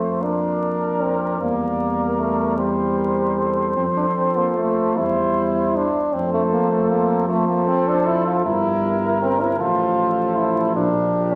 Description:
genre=classical, brass quintet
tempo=52 BPM (dotted quarters)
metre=6/8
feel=rubato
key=F major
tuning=A4 = 444 Hz
part: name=mellow trumpet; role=melody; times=0.0-11.4 s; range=A4 to D5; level=-31 LUFS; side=equal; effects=none
part: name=warm flugelhorn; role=second line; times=0.0-11.4 s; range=G4 to C5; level=-27 LUFS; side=equal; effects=none
part: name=clear French horn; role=accompaniment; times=0.0-11.4 s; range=G3 to F4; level=-24 LUFS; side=equal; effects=none
part: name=mellow euphonium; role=accompaniment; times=0.0-11.4 s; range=F3 to C4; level=-29 LUFS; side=equal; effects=none
part: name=mellow tuba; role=bass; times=0.0-11.4 s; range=G1 to F2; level=-28 LUFS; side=equal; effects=none
room=wet recital hall reverb, RT60 1.3 s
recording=vinyl crackle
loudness=-20 LUFS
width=mono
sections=0.0-11.4 A section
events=none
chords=0.2 Bbadd9/F; 1.4 C7/E; 3.8 F; 5.0 C/E; 6.1 F; 8.4 Edim/G; 9.6 F/A; 10.8 Gm7/Bb

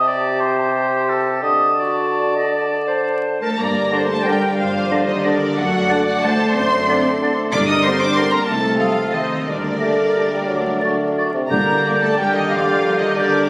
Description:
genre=classical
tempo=156-200 BPM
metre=3/4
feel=rubato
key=G minor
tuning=A4 = 440 Hz
part: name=clear clarinet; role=second line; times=0.0-13.5 s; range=D4 to Eb5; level=-28 LUFS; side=equal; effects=none
part: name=clear oboe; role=second line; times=0.0-13.5 s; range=A4 to Eb5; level=-26 LUFS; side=equal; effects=none
part: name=silver concert flute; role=second line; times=0.0-13.5 s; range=A5 to Bb6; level=-29 LUFS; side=equal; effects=none
part: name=mellow bassoon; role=accompaniment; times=0.0-13.5 s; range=C3 to A3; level=-25 LUFS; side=equal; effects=none
part: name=warm studio violin section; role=melody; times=3.4-13.5 s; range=D5 to Eb6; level=-25 LUFS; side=equal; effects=none
part: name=rich studio violin section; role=second line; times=3.4-13.5 s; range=D4 to Eb5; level=-30 LUFS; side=equal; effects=none
part: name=warm studio cello section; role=bass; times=3.4-13.5 s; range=D3 to Eb4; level=-27 LUFS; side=equal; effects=none
part: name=rich studio viola section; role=accompaniment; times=3.6-13.5 s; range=A4 to D5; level=-28 LUFS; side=equal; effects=none
part: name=dark trombone section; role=sustained chords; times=3.6-13.5 s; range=C3 to A3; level=-28 LUFS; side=equal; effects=none
part: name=mellow French horn section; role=sustained chords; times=3.6-13.5 s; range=A3 to Eb4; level=-31 LUFS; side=equal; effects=none
part: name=mellow trumpet section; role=stabs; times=3.6-13.4 s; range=A4 to D5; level=-31 LUFS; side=equal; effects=none
part: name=warm studio double bass section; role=bass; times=3.6-12.8 s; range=C2 to G2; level=-32 LUFS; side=equal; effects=none
part: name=timpani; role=percussion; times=7.5-8.0, 11.5-12.0 s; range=G2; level=-31 LUFS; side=equal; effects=none
room=wet scoring stage reverb, RT60 1.5 s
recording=recorded on a phone in the room, club reverb, vinyl crackle, compression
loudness=-18 LUFS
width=mono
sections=0.0-3.6 A section; 3.6-13.5 B section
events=none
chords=0.0 Am7/C; 1.4 D; 3.6 Gm; 5.6 D7/F#; 7.5 Gm; 8.5 Adim/C; 9.5 Gm/D; 10.5 D; 11.5 Gm

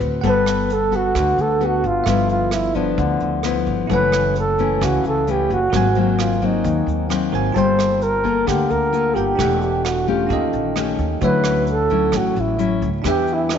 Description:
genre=bossa nova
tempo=131 BPM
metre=4/4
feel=straight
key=unclear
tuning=A4 = 441 Hz
part: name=nylon-string guitar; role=accompaniment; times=0.0-13.6 s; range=F#2 to B4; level=-21 LUFS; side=left 8 dB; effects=none
part: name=upright bass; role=bass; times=0.0-13.6 s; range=E1 to E2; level=-24 LUFS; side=right 2 dB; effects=none
part: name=vintage brush drum kit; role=drums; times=0.0-13.6 s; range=hi-hat, kick drum, rim click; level=-30 LUFS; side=right 6 dB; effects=none
part: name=bell-like tine electric piano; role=accompaniment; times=0.2-13.6 s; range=Db4 to A5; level=-28 LUFS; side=right 11 dB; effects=none
part: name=breathy flugelhorn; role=melody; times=0.3-13.6 s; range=D4 to C5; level=-20 LUFS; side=right 2 dB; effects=none
room=moderate echo chamber reverb, RT60 1.8 s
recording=1960s-style stereo with parts hard left and right, nothing above 7.8 kHz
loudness=-16 LUFS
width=side -8 dB against mid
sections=0.0-13.6 A section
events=none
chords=0.2 Gmaj9; 2.1 G13; 3.9 F#m7; 5.7 G#9; 7.6 Gm9; 9.4 Em11; 10.3 Eb7#11; 11.2 Dmaj9; 13.0 Em7

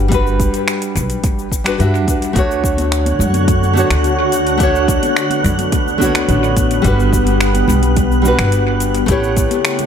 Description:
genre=sunset chillout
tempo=107 BPM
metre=4/4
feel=straight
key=D major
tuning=A4 = 440 Hz
part: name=nylon-string guitar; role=accompaniment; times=0.0-9.9 s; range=G3 to E5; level=-18 LUFS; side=equal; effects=auto-pan, dub echo, shimmer reverb
part: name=upright bass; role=bass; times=0.0-9.4 s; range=G1 to G2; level=-17 LUFS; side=equal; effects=none
part: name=deep house drum kit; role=drums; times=0.1-9.9 s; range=cabasa, finger snaps, hi-hat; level=-22 LUFS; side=left 1 dB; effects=overdrive, small room ambience, analog delay
part: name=electronic kick drum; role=drums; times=0.1-9.5 s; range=none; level=-18 LUFS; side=equal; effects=overdrive, small room ambience
part: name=shimmering ambient pad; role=sustained chords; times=2.9-9.9 s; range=C#3 to C#5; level=-19 LUFS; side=equal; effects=chorus, built-in reverb
part: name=wind-like tuned noise texture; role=texture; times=2.8-9.9 s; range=F#6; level=-26 LUFS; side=right 4 dB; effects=built-in reverb, shimmer reverb
part: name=congas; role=percussion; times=2.8-9.9 s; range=none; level=-24 LUFS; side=left 2 dB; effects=analog delay
room=light reverb, small room ambience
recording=echo-heavy mix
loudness=-12 LUFS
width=side -8 dB against mid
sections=0.0-9.9 A section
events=none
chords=0.0 Gmaj7; 2.4 Dmaj7; 6.8 Gmaj7; 9.1 A7

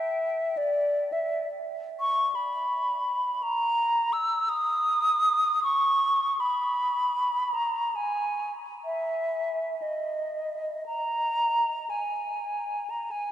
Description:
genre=classical, free, expressive piece for unaccompanied flute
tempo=51-86 BPM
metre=3/4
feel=rubato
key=unclear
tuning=A4 = 438 Hz
part: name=mellow hollow silver concert flute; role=solo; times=0.0-13.3 s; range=D5 to E6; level=-25 LUFS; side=equal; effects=none
room=wet cathedral reverb, RT60 6.2 s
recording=none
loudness=-25 LUFS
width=side -12 dB against mid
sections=0.0-11.9 A section; 11.9-13.3 B section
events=none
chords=none

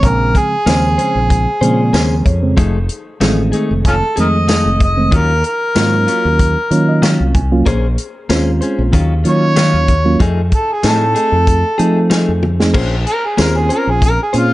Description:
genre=straight-eighth soul blues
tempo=94 BPM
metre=4/4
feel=swing 54% on 16ths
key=Bb minor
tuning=A4 = 440 Hz
part: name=mellow harmonica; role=melody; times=0.0-14.5 s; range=Db4 to Eb5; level=-16 LUFS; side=equal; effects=overdrive
part: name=reed electric piano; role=accompaniment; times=0.0-14.5 s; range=Db3 to Ab5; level=-18 LUFS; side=right 2 dB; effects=none
part: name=fingered electric bass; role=bass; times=0.0-14.5 s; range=F1 to F3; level=-15 LUFS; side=equal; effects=none
part: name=warm soul drum kit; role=drums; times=0.0-14.5 s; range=crash cymbal, hi-hat, kick drum, snare drum, tambourine, toms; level=-16 LUFS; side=equal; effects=none
part: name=direct-recorded clean electric guitar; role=stabs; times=0.7-14.5 s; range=Eb3 to C5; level=-21 LUFS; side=left 4 dB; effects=spring reverb
room=light reverb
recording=nothing above 10.3 kHz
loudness=-11 LUFS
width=side -17 dB against mid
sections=0.0-12.7 A section; 12.7-14.5 B section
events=reed electric piano fill 1.6-2.6, 6.4-7.7; drum fill 12.4-12.7; harmonica solo 12.7-14.5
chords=0.0 Bbm9; 2.6 F7#9; 5.1 Ebm9; 7.7 Bbm9; 8.9 Ebm9; 10.2 F7#9; 12.7 Bbm9

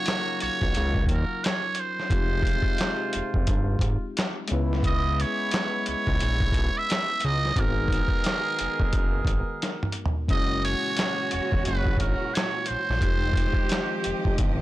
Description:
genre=R&B, neo-soul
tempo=88 BPM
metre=4/4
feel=swing 58% on 16ths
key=unclear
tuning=A4 = 440 Hz
part: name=trumpet with metal mute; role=melody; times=0.0-14.6 s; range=Bb4 to Fb5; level=-28 LUFS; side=right 3 dB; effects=slapback echo
part: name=mellow tine electric piano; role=accompaniment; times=0.0-14.6 s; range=Gb3 to C5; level=-34 LUFS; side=left 5 dB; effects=none
part: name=warm horn section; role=stabs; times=0.0-14.6 s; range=C3 to Ab4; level=-35 LUFS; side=right 1 dB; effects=none
part: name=boom bap sampler-style drum kit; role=drums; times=0.1-14.6 s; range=handclaps, hi-hat, kick drum, snare drum, toms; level=-26 LUFS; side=equal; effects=soft clipping on snare
part: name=fat analog bass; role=bass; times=0.4-14.6 s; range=Fb1 to Eb2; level=-27 LUFS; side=equal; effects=none
part: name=warm studio string section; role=sustained chords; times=10.3-14.6 s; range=Bb2 to Eb5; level=-34 LUFS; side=right 1 dB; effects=none
room=little or no reverb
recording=blown-out, overdriven recording, overdrive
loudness=-23 LUFS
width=side -16 dB against mid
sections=0.0-14.6 A section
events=drum fill 9.6-10.3; tine electric piano fill 14.4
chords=0.0 Ebm9; 2.1 Fm9; 4.5 Dbm7; 7.6 Abm9; 10.3 Gb7; 13.0 Fm9

